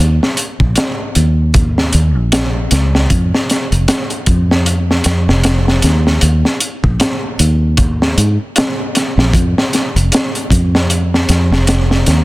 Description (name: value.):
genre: trip hop.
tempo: 77 BPM.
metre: 4/4.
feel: swing 57% on 16ths.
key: unclear.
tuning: A4 = 440 Hz.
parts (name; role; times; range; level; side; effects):
fingered electric bass; bass; 0.0-12.2 s; F1 to Ab2; -12 LUFS; equal; tube saturation.
crunchy breakbeat drum kit; drums; 0.2-12.2 s; hi-hat, kick drum, snare drum; -14 LUFS; equal; none.
room: little or no reverb.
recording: dense, heavily limited modern master.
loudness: -11 LUFS.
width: side -20 dB against mid.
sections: 0.0-12.2 A section.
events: none.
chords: none.